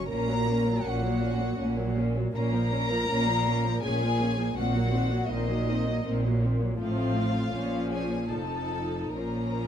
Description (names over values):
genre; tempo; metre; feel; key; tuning
classical, slow romantic movement for string orchestra; 79 BPM; 3/4; uneven beats, rubato; Bb minor; A4 = 439 Hz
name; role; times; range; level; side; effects
warm chamber violin section; melody; 0.0-9.7 s; Eb5 to Bb5; -34 LUFS; left 3 dB; none
warm chamber violin section; second line; 0.0-9.7 s; Eb4 to Bb4; -36 LUFS; left 2 dB; none
warm chamber viola section; accompaniment; 0.0-9.7 s; Eb3 to Eb4; -31 LUFS; left 1 dB; none
dark chamber double bass section; bass; 0.1-9.7 s; F1 to Bb1; -30 LUFS; right 1 dB; none
rich chamber cello section; bass; 0.1-9.7 s; F2 to Bb2; -31 LUFS; right 1 dB; none
room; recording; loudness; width
light reverb; dark, warm production; -25 LUFS; side -9 dB against mid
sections
0.0-9.7 A section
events
none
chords
0.1 Gb/Bb; 2.3 Bbm; 4.6 Cm7b5/Bb; 6.8 F/A; 7.5 Bbm; 8.3 F7; 9.1 Bbm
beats
| 0.07 0.84 1.58 | 2.33 3.09 3.84 | 4.56 5.29 6.06 | 6.79 7.52 8.29 | 9.14